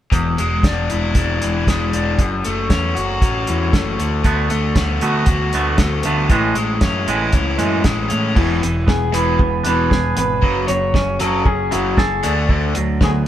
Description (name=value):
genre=indie rock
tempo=116 BPM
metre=4/4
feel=straight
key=E mixolydian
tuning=A4 = 442 Hz
part: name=overdriven electric guitar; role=riff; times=0.1-13.2 s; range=E2 to F#4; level=-20 LUFS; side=left 3 dB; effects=spring reverb
part: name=growling picked electric bass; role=bass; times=0.1-13.2 s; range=E1 to A2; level=-22 LUFS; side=equal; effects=overdrive
part: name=cloth-damped thuddy drum kit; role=drums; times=0.1-13.1 s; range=crash cymbal, hi-hat, kick drum, snare drum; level=-18 LUFS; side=equal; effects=none
part: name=twangy electric guitar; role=riff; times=4.2-13.3 s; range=A2 to A4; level=-23 LUFS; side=right 4 dB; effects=none
part: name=electric guitar through a small old amp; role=melody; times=8.9-13.1 s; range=F#4 to C#5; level=-20 LUFS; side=right 1 dB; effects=none
room=light reverb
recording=band playing live in one room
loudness=-15 LUFS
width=side -11 dB against mid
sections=0.1-8.4 A section; 8.4-13.3 B section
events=none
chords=0.1 E7; 2.2 F#m7; 4.0 D6; 6.3 Amaj7; 8.4 E7; 10.4 F#m7; 12.2 D6